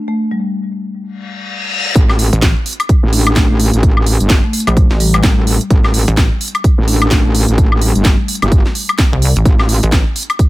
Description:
bass house; 128 BPM; 4/4; swing 60% on 16ths; A phrygian; A4 = 440 Hz
marimba with soft mallets; melody; 0.1-8.2 s; G3 to D4; -21 LUFS; left 1 dB; dub echo
reverse cymbal; sound effects; 1.2-2.0 s; -19 LUFS; left 4 dB
metallic wobble bass; bass; 2.0-9.8 s; G1 to A1; -13 LUFS; equal; distortion, chorus, tube saturation, sidechain pumping
electronic kick drum; drums; 2.0-10.5 s; -12 LUFS; equal
house drum kit; drums; 2.0-10.5 s; hi-hat, snare drum, woodblock; -17 LUFS; equal
pulsing pluck wobble bass; bass; 2.3-6.3, 9.1-10.0 s; A1 to C2; -13 LUFS; equal; chorus, tube saturation, sidechain pumping
little or no reverb; -10 LUFS; side -18 dB against mid
0.0-2.0 A section; 2.0-10.5 B section
reverse cymbal 1.2-2.0; drop 2.0-10.5
| 0.08 0.55 1.02 1.49 | 1.96 2.42 2.89 3.36 | 3.83 4.30 4.77 5.24 | 5.71 6.17 6.64 7.11 | 7.58 8.05 8.52 8.99 | 9.46 9.92 10.39

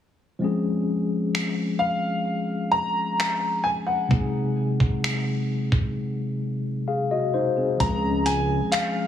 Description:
contemporary R&B; 65 BPM; 4/4; straight; Db major; A4 = 440 Hz
mellow tine electric piano; accompaniment; 0.4-9.1 s; C3 to F5; -24 LUFS; left 2 dB; medium stereo tremolo
dusty soul sampler-style drum kit; drums; 1.3-8.9 s; finger snaps, hi-hat, kick drum; -25 LUFS; right 1 dB
warm baby grand piano; melody; 1.8-9.1 s; F5 to Bb5; -25 LUFS; equal; tape echo
fat analog bass; bass; 7.8-8.6 s; Db2; -26 LUFS; right 1 dB
light reverb, digital ambience; heavily compressed radio sound, multiband compression, small room ambience; -22 LUFS; side -10 dB against mid
0.4-7.8 A section; 7.8-9.1 B section
silent gap 6.0-7.8
0.4 Dbmaj7; 4.1 Ab7/C; 7.8 Dbmaj7
| 0.41 1.34 2.26 3.18 | 4.11 5.03 5.95 6.88 | 7.80 8.72

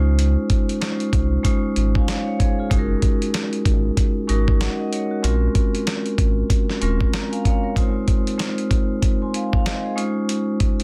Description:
hip hop, boom-bap hip-hop; 95 BPM; 4/4; swing 60% on 16ths; Bb minor; A4 = 443 Hz
vibraphone with medium hard mallets; accompaniment; 0.0-10.8 s; Ab3 to C6; -25 LUFS; equal; cassette tape, high-pass filter, low-pass filter, plate reverb
sub bass with octave; bass; 0.0-7.1 s; Eb1 to Db2; -22 LUFS; equal
dusty soul sampler-style drum kit; drums; 0.2-10.8 s; hi-hat, kick drum, snare drum; -23 LUFS; equal
light reverb; dense, heavily limited modern master; -21 LUFS; mono
0.0-10.8 A section
0.0 Dbmaj7; 2.7 Gb6; 5.2 Bbm7; 7.8 Fm7; 10.0 Dbmaj7
| 0.18 0.81 1.45 2.08 | 2.71 3.34 3.97 4.61 | 5.24 5.87 6.50 7.13 | 7.76 8.39 9.03 9.66 | 10.29

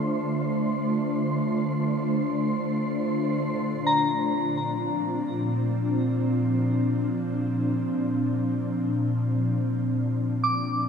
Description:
ambient; free time; A4 = 440 Hz
ethereal airy pad; sustained chords; 0.0-10.9 s; Bb2 to F4; -24 LUFS; equal; ensemble chorus, built-in reverb
wind-like tuned noise texture; texture; 0.0-3.4 s; C5 to C6; -35 LUFS; right 2 dB; built-in reverb
soft synth bell; arpeggios; 3.9-10.9 s; Bb5 to D6; -27 LUFS; left 1 dB; chorus, phaser, ping-pong delay
wet cathedral reverb, RT60 5.2 s; in a vast, echoing space; -23 LUFS; side -6 dB against mid
0.0-3.4 A section; 3.4-10.9 B section
0.0 Dm7; 3.4 Bb
free time

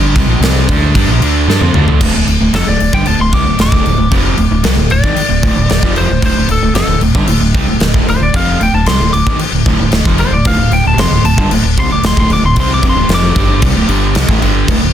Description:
hard rock; 114 BPM; 4/4; straight; D minor; A4 = 440 Hz
overdriven semi-hollow guitar; riff; 0.0-14.9 s; D2 to D4; -14 LUFS; right 1 dB
growling fingered electric bass; bass; 0.0-14.9 s; D1 to G2; -15 LUFS; equal; overdrive
gated 80s drum kit; drums; 0.2-14.8 s; crash cymbal, kick drum, snare drum, toms; -14 LUFS; equal
lightly driven lead guitar; melody; 2.6-14.7 s; A4 to D6; -17 LUFS; left 2 dB; analog delay
little or no reverb; dense, heavily limited modern master; -9 LUFS; side -10 dB against mid
0.0-2.0 A section; 2.0-14.9 B section
drum fill 1.5-2.0; lead electric guitar solo 2.0-14.9
0.0 Bb5; 2.0 Dm
0.42 0.95 1.47 | 2.00 2.53 3.06 3.59 | 4.12 4.65 5.17 5.70 | 6.23 6.76 7.29 7.82 | 8.35 8.87 9.40 9.93 | 10.46 10.99 11.52 12.04 | 12.57 13.10 13.63 14.16 | 14.69

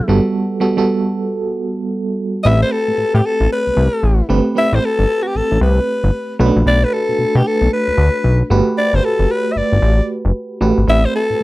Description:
R&B, new jack swing; 114 BPM; 4/4; swing 63% on 16ths; A dorian; A4 = 440 Hz
growling alto saxophone; melody; 0.0-11.4 s; F#4 to E5; -17 LUFS; left 2 dB; slapback echo
FM electric piano with tremolo; accompaniment; 0.0-11.4 s; F#3 to B4; -19 LUFS; right 3 dB
fat analog bass; bass; 0.1-11.4 s; F#1 to B2; -14 LUFS; equal
little or no reverb; dry, close 1970s-style studio recording; -13 LUFS; side -18 dB against mid
0.0-2.5 A section; 2.5-11.4 B section
break 0.3-2.5
0.1 Gmaj9; 2.5 Am9; 6.4 Bm7; 8.5 Gmaj9; 10.9 Am9
| 0.35 0.87 1.40 1.93 | 2.45 2.98 3.50 4.03 | 4.56 5.08 5.61 6.14 | 6.66 7.19 7.71 8.24 | 8.77 9.29 9.82 10.35 | 10.87 11.40

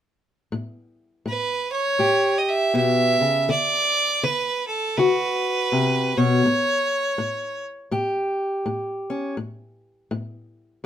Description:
acoustic country blues, solo or duo; 82 BPM; 4/4; swing 61% on 8ths; A mixolydian; A4 = 441 Hz
fingerpicked steel-string acoustic guitar; accompaniment; 0.5-10.9 s; A2 to G4; -22 LUFS; left 2 dB
bright fiddle; melody; 1.3-7.6 s; A4 to E5; -21 LUFS; right 2 dB
light reverb; minimal, uncompressed stereo recording; -20 LUFS; side -10 dB against mid
0.5-10.9 A section
0.5 A7; 3.5 D7; 6.4 A7
| 0.54 1.28 2.02 2.76 | 3.49 4.23 4.97 5.71 | 6.44 7.18 7.91 8.65 | 9.38 10.12 10.85

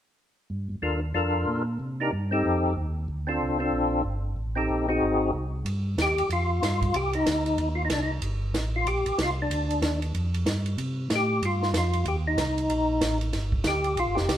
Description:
soul jazz organ trio; 187 BPM; 4/4; swing 61% on 8ths; G minor; A4 = 441 Hz
mellow tonewheel organ; bass; 0.5-14.4 s; F1 to C3; -28 LUFS; equal; overdrive, chorus vibrato, slow rotary speaker
percussive tonewheel organ; melody; 0.8-14.4 s; C4 to Bb4; -26 LUFS; left 1 dB; slow rotary speaker, chorus vibrato
compact cocktail drum kit; drums; 5.7-14.4 s; hi-hat, kick drum, ride cymbal, snare drum; -31 LUFS; right 1 dB
moderate stone room reverb, RT60 1.2 s; band playing live in one room; -24 LUFS; side -11 dB against mid
0.5-5.7 A section; 5.7-14.4 B section
0.5 Gm9; 1.8 Cm7; 2.4 F7; 3.1 Bbmaj7; 4.4 Am7b5; 5.0 Ab7; 5.7 Ebadd9; 6.9 Cm; 8.2 Gm7; 10.8 Cm7; 13.3 Gm7
| 0.50 0.82 1.15 1.47 | 1.79 2.11 2.44 2.76 | 3.08 3.40 3.72 4.04 | 4.37 4.69 5.01 5.33 | 5.65 5.97 6.29 6.62 | 6.93 7.26 7.58 7.90 | 8.22 8.54 8.86 9.18 | 9.50 9.82 10.14 10.46 | 10.78 11.10 11.42 11.74 | 12.06 12.38 12.70 13.02 | 13.34 13.65 13.97 14.29

